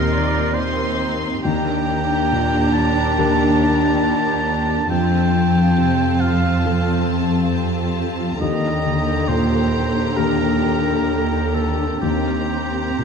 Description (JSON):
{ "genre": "cinematic, emotional film score for orchestra", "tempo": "69 BPM", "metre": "4/4", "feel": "rubato", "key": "Eb lydian", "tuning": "A4 = 440 Hz", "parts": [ { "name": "rich chamber violin section", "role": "melody", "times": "0.0-13.0 s", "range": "A5 to C6", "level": "-31 LUFS", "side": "left 4 dB", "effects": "none" }, { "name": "rich studio violin section", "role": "second line", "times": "0.0-13.0 s", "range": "Eb4 to G4", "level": "-29 LUFS", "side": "left 3 dB", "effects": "none" }, { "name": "warm oboe", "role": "second line", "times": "0.0-13.0 s", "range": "G4 to A5", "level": "-24 LUFS", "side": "right 3 dB", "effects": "none" }, { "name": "felt-muted upright piano", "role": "accompaniment", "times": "0.0-13.0 s", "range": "Eb2 to Bb4", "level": "-24 LUFS", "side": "equal", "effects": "none" }, { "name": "warm symphonic viola section", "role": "accompaniment", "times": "0.0-13.0 s", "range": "D3 to D5", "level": "-26 LUFS", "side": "right 3 dB", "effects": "none" }, { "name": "concert harp", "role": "arpeggios", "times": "0.0-13.0 s", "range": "D3 to D5", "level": "-24 LUFS", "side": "left 10 dB", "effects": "none" }, { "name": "rich symphonic cello section", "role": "bass", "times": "0.0-13.0 s", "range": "Eb2 to F2", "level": "-22 LUFS", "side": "right 3 dB", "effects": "none" } ], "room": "moderate scoring stage reverb, RT60 2.0 s", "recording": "dark, warm production", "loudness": "-16 LUFS", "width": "side -6 dB against mid", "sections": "0.0-13.0 A section", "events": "none", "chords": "0.0 Ebmaj7; 4.9 F; 8.4 Ebmaj7; 12.0 Cm7/Eb" }